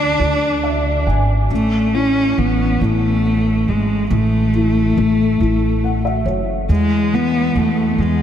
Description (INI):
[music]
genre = pop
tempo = 46 BPM (dotted quarters)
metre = 6/8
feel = straight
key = A major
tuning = A4 = 438 Hz
[part]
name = rich cello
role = melody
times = 0.0-8.2 s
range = G#3 to D4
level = -17 LUFS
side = equal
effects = analog delay
[part]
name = felt-muted upright piano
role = accompaniment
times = 0.0-8.2 s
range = D3 to G#5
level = -21 LUFS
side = left 2 dB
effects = analog chorus
[part]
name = upright bass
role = bass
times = 0.0-8.2 s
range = F#1 to E2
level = -19 LUFS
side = equal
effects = none
[sound]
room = wet cathedral reverb, RT60 6.0 s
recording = dreamy mix soaked in reverb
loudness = -14 LUFS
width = side -9 dB against mid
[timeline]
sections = 0.0-8.2 A section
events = felt piano fill 0.2-1.5, 5.4-6.7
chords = 0.0 Dadd9; 1.5 A; 6.7 E